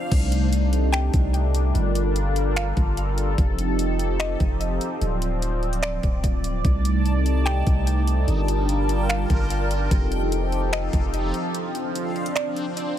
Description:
hip hop, atmospheric cloud-rap; 147 BPM; 4/4; half-time; C dorian; A4 = 440 Hz
sweeping resonant pad; sustained chords; 0.0-13.0 s; C3 to A5; -26 LUFS; equal; chorus, sidechain pumping
backwards swelling texture; texture; 0.0-0.1, 7.0-13.0 s; D4 to A5; -34 LUFS; equal; built-in reverb
long sustained 808-style bass; bass; 0.1-11.3 s; D1 to C2; -23 LUFS; equal
smooth R&B drum kit; drums; 0.1-12.9 s; crash cymbal, finger snaps, hi-hat, kick drum; -24 LUFS; equal
mallet-like synth pluck; melody; 0.9-12.7 s; D5 to G5; -34 LUFS; equal; chorus, digital delay
little or no reverb; faint mains hum; -20 LUFS; side -11 dB against mid
0.1-13.0 A section
break 11.5-13.0
0.1 Cm69; 1.7 Gm7; 3.4 F7; 5.0 Dm7; 6.6 Cm69; 8.3 Gm7; 9.9 F7; 11.5 Dm7

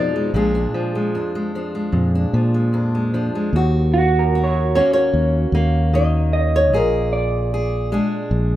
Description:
acoustic folk-pop ballad; 75 BPM; 4/4; straight; Eb minor from 3.5 s; A4 = 440 Hz
flamenco guitar; melody; 0.0-8.6 s; Bb4 to Eb5; -21 LUFS; left 1 dB
fingerpicked steel-string acoustic guitar; accompaniment; 0.0-8.6 s; Eb2 to Ab4; -22 LUFS; equal
fingered electric bass; bass; 0.0-8.6 s; Bb1 to Bb2; -18 LUFS; equal
electric guitar through a small old amp; arpeggios; 3.9-8.6 s; Gb4 to Eb5; -23 LUFS; right 4 dB; harmonic tremolo, slapback echo
small room ambience; rough home demo mix; -16 LUFS; side -13 dB against mid
0.0-3.5 A section; 3.5-8.6 B section
0.3 Bb7; 3.5 Ebm7; 6.7 Bb7

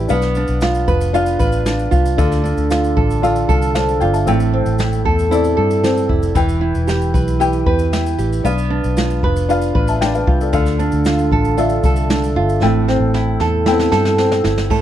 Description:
acoustic pop; 115 BPM; 4/4; straight; A minor; A4 = 440 Hz
felt-muted upright piano; accompaniment; 0.0-14.7 s; B3 to A5; -22 LUFS; left 8 dB
nylon-string guitar; accompaniment; 0.0-14.8 s; A2 to B4; -17 LUFS; right 4 dB
vintage muted fingered electric bass; bass; 0.0-14.7 s; E1 to G2; -19 LUFS; left 1 dB
jazz brush drum kit; drums; 0.1-14.8 s; crash cymbal, kick drum, shaker, snare drum; -21 LUFS; equal
little or no reverb; dark, warm production; -14 LUFS; side -11 dB against mid
0.0-14.7 A section
drum fill 12.6-14.7
0.1 Bdim; 2.2 Dm; 4.3 Am7; 6.4 Em; 8.4 Bdim; 10.5 Dm; 12.6 Am7

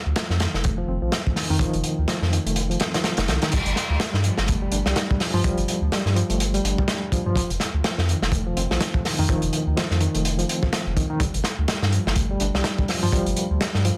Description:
breakbeat, breaks; 125 BPM; 4/4; swing 57% on 16ths; A4 = 440 Hz
saturated sub bass; bass; 0.1-13.9 s; F1 to G2; -26 LUFS; equal
barky reed electric piano; riff; 0.2-14.0 s; Eb3 to D4; -29 LUFS; equal; overdrive, fast tremolo, tape echo
crunchy breakbeat drum kit; drums; 0.2-14.0 s; crash cymbal, hi-hat, kick drum, snare drum; -26 LUFS; equal
light reverb; dense, heavily limited modern master, vinyl crackle; -23 LUFS; mono
0.0-3.5 A section; 3.5-14.0 B section
drop 3.5-14.0
0.0 F7(no3); 3.5 Gsus2; 7.4 F7(no3); 11.2 Gsus2

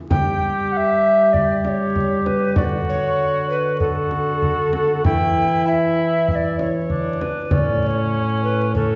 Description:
classical, renaissance-style consort dance; 97 BPM; 4/4; straight; A4 = 441 Hz
mellow tenor recorder; melody; 0.1-9.0 s; A4 to G5; -23 LUFS; equal
warm cor anglais; second line; 0.1-9.0 s; C#4 to G4; -28 LUFS; equal
warm trombone; bass; 0.1-9.0 s; A2 to G3; -25 LUFS; equal
frame drum; percussion; 0.1-9.0 s; -26 LUFS; equal
wet recital hall reverb, RT60 1.8 s; heard from further back in the room, vinyl crackle, nothing above 7.5 kHz; -19 LUFS; mono
0.1-9.0 A section
0.1 G5; 2.6 D; 5.1 Em; 7.5 A

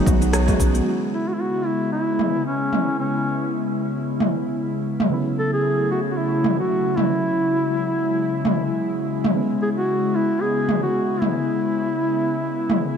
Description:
organic downtempo; 113 BPM; 4/4; swing 56% on 16ths; C# minor; A4 = 440 Hz
mellow duduk; melody; 0.0-13.0 s; C#4 to A4; -24 LUFS; equal; tape echo
muted felt-like synth keys; accompaniment; 0.0-13.0 s; C#3 to G#4; -28 LUFS; right 2 dB; chorus, sidechain pumping, tape echo
airy breathy pad; sustained chords; 0.0-13.0 s; C#3 to F#4; -25 LUFS; left 2 dB; chorus, sidechain pumping
buzzing kalimba; arpeggios; 0.0-0.8 s; B3 to C#5; -30 LUFS; left 2 dB; tape echo
round analog bass; bass; 0.1-0.8 s; B1; -21 LUFS; equal; tube saturation, sidechain pumping
electronic kick drum; drums; 0.1-0.7 s; -21 LUFS; equal
organic electronic drum kit; drums; 0.1-12.8 s; hi-hat, rim click, shaker, toms; -23 LUFS; right 1 dB
bongos and congas; percussion; 0.1-0.8 s; barely audible
moderate lush hall reverb, RT60 2.7 s; -19 LUFS; side -7 dB against mid
0.9-13.0 A section
band accent 0.3
0.0 B; 0.9 C#m7; 5.1 A6/C#; 9.4 C#m7

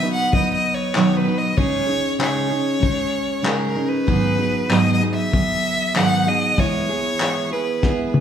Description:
acoustic pop; 96 BPM; 4/4; swing 55% on 16ths; A4 = 439 Hz
rich violin; melody; 0.0-8.1 s; A#4 to F#5; -22 LUFS; equal
picked steel-string acoustic guitar; accompaniment; 0.0-8.2 s; G#2 to B4; -20 LUFS; right 1 dB
cloth-damped thuddy drum kit; drums; 0.3-8.2 s; handclaps, kick drum, snare drum, toms; -22 LUFS; left 2 dB
wet recital hall reverb, RT60 1.5 s; recorded in a church or concert hall; -17 LUFS; side -8 dB against mid
0.0-8.2 A section
drum fill 7.8-8.2
0.0 B; 1.6 C#sus2; 4.1 G#m7; 6.6 E

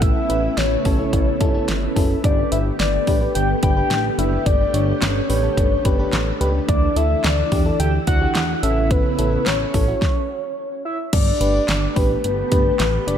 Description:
synth-pop; 108 BPM; 4/4; straight; A4 = 440 Hz
soft octave-layered synth lead; melody; 0.0-13.2 s; B4 to G5; -22 LUFS; left 1 dB; chorus, phaser, tape echo
FM electric piano with auto-pan; accompaniment; 0.0-13.2 s; C#4 to D5; -26 LUFS; left 3 dB; tape echo
ensemble organ-string; sustained chords; 0.0-13.2 s; C#3 to G4; -26 LUFS; right 1 dB; ensemble chorus
chorused synth bass; bass; 0.0-13.2 s; F#1 to E2; -22 LUFS; equal
pop drum kit; drums; 0.0-13.2 s; crash cymbal, handclaps, hi-hat, kick drum, snare drum; -21 LUFS; equal
light reverb, digital ambience; echo-heavy mix; -16 LUFS; side -9 dB against mid
0.0-11.1 A section; 11.1-13.2 B section
stop 10.0-11.1
0.0 Aadd9; 2.2 Gadd9; 6.7 Dsus2; 8.6 Aadd9; 11.1 Gadd9

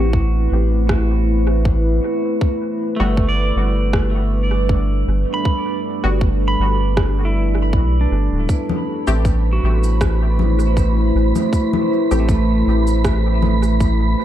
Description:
ambient dub; 79 BPM; 4/4; swing 54% on 16ths; A dorian; A4 = 440 Hz
deep dark ambient pad; sustained chords; 0.0-14.2 s; G3 to C5; -22 LUFS; right 1 dB; chorus, built-in reverb
pedal steel guitar; arpeggios; 0.0-14.2 s; A3 to B5; -26 LUFS; right 2 dB; dub echo
filtered dub chord stab; stabs; 0.0-12.3 s; G3 to G4; -27 LUFS; left 3 dB; wide subtle chorus, dub echo
soft dub sub bass; bass; 0.0-14.2 s; D1 to B1; -17 LUFS; equal
electronic kick drum; drums; 0.1-14.0 s; -19 LUFS; equal; overdrive
electronic rim click, cabasa and congas; drums; 0.9-14.0 s; -26 LUFS; left 2 dB; overdrive, dub echo
wind-like tuned noise texture; texture; 9.0-14.2 s; B5; -29 LUFS; right 4 dB; built-in reverb
light reverb, digital ambience; dark, warm production; -15 LUFS; side -12 dB against mid
0.0-14.2 A section
0.0 Am; 2.4 G; 8.5 Am

